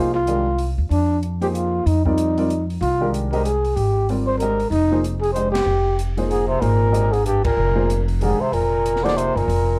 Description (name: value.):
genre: modal jazz.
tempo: 189 BPM.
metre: 3/4.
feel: swing 61% on 8ths.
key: F dorian.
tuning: A4 = 440 Hz.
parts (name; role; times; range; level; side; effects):
breathy trumpet; melody; 0.0-9.8 s; D4 to D5; -23 LUFS; equal; plate reverb.
warm baby grand piano; accompaniment; 0.0-9.5 s; Eb3 to Eb5; -28 LUFS; equal; none.
upright bass; bass; 0.0-9.8 s; F1 to F2; -24 LUFS; equal; none.
open jazz drum kit; drums; 0.3-9.6 s; hi-hat, kick drum, ride cymbal, snare drum; -35 LUFS; equal; none.
clear bass clarinet; second line; 6.3-9.8 s; G2 to D3; -28 LUFS; equal; none.
room: light reverb.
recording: dark, warm production.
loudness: -20 LUFS.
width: mono.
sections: 0.0-9.8 A section.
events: band accent 5.5, 7.4.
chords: 0.0 Fm11.